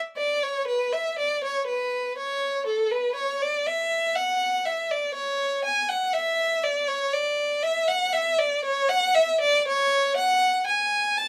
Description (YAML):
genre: classical, baroque-style suite movement for unaccompanied violin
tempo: 60 BPM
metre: 4/4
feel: rubato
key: unclear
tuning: A4 = 440 Hz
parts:
  - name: rich violin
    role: solo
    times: 0.2-11.3 s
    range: A4 to A5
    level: -24 LUFS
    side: equal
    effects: none
room: little or no reverb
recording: close, detailed microphones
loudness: -25 LUFS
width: mono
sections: 0.0-11.3 A section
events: none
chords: none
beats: 0.18 1.19 | 2.18 3.17 4.17 5.16 | 6.16 7.16 8.16 9.16 | 10.17 11.17